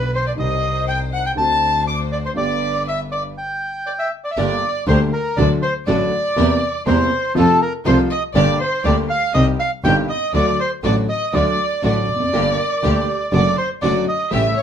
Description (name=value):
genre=tango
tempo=121 BPM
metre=4/4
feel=rubato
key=G major, G minor from 4.4 s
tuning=A4 = 440 Hz
part: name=bandoneon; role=melody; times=0.0-14.6 s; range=A4 to D6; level=-20 LUFS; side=right 2 dB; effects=none
part: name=dark violin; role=second line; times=0.0-14.6 s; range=A4 to D6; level=-26 LUFS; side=left 4 dB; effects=none
part: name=dark baby grand piano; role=accompaniment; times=0.0-14.5 s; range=G1 to G4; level=-22 LUFS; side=left 1 dB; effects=none
part: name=clear symphonic string section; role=stabs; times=0.0-14.5 s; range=A3 to C5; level=-28 LUFS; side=right 1 dB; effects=none
part: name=clear double bass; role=bass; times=0.0-14.5 s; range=F1 to F2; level=-21 LUFS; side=equal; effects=none
part: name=vibraphone with medium mallets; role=second line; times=12.3-13.2 s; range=G4 to Bb4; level=-28 LUFS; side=right 6 dB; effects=none
room=moderate club reverb, RT60 0.6 s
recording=minimal, uncompressed stereo recording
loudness=-16 LUFS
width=side -8 dB against mid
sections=0.0-4.4 A section; 4.4-14.6 B section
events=stop 3.4-4.4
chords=0.4 Cm; 1.4 D7; 2.4 G; 4.4 Gm; 5.4 D; 6.4 C7/E; 7.4 F; 8.4 Gm; 9.3 Cm; 10.3 D; 12.3 Gm; 13.3 D/F#